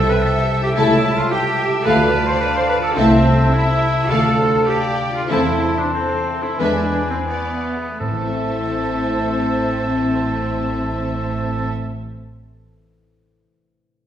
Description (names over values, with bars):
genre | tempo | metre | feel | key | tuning
classical, dramatic, fast romantic movement for symphony orchestra | 80-112 BPM | 4/4 | straight | A minor | A4 = 440 Hz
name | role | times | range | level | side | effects
warm symphonic violin section | melody | 0.0-11.7 s | A4 to A5 | -30 LUFS | left 3 dB | none
clear oboe | second line | 0.0-11.7 s | B3 to C5 | -25 LUFS | right 1 dB | none
silver concert flute | second line | 0.0-11.7 s | G5 to C6 | -27 LUFS | right 1 dB | none
warm clarinet | second line | 0.0-11.7 s | C5 to A5 | -28 LUFS | left 1 dB | none
concert harp | arpeggios | 0.0-12.5 s | A2 to A5 | -24 LUFS | left 3 dB | none
rich symphonic cello section | bass | 0.0-11.7 s | A3 to C5 | -24 LUFS | right 2 dB | none
rich symphonic double bass section | bass | 0.0-11.7 s | A1 to E2 | -25 LUFS | right 2 dB | none
rich symphonic violin section | second line | 0.8-11.7 s | A4 to A5 | -29 LUFS | left 2 dB | none
rich symphonic viola section | accompaniment | 0.8-11.7 s | A3 to B4 | -23 LUFS | equal | none
dark French horn section | sustained chords | 0.8-11.7 s | G#3 to F4 | -25 LUFS | left 2 dB | none
timpani | percussion | 8.0-12.2 s | A2 | -29 LUFS | right 1 dB | none
room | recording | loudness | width
wet recital hall reverb, RT60 1.3 s | heard from further back in the room | -16 LUFS | side -10 dB against mid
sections
0.0-8.0 A section; 8.0-10.9 B section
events
slowing down 1.9-8.0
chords
0.0 C; 0.8 A7/C#; 1.9 Dm; 3.0 Am/C; 4.1 Dm; 5.3 Am/E; 6.6 E7; 8.0 Am